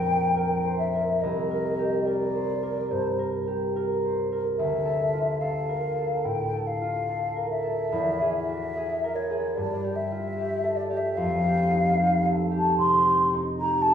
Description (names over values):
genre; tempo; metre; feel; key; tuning
classical, impressionist duo for flute and harp; 72 BPM; 4/4; uneven beats, rubato; unclear; A4 = 440 Hz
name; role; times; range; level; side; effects
mellow hollow silver concert flute; melody; 0.0-13.9 s; C5 to C6; -26 LUFS; left 1 dB; none
concert harp; accompaniment; 0.0-13.9 s; Bb1 to D5; -26 LUFS; right 1 dB; none
room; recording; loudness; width
wet recital hall reverb, RT60 1.4 s; recorded in a church or concert hall, lossy compression artefacts; -23 LUFS; side -8 dB against mid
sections
0.0-13.9 A section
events
none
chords
0.0 Bb69; 1.2 Cm7; 4.6 Dm; 7.9 Eadd9; 9.6 Gsus2; 11.2 Fsus2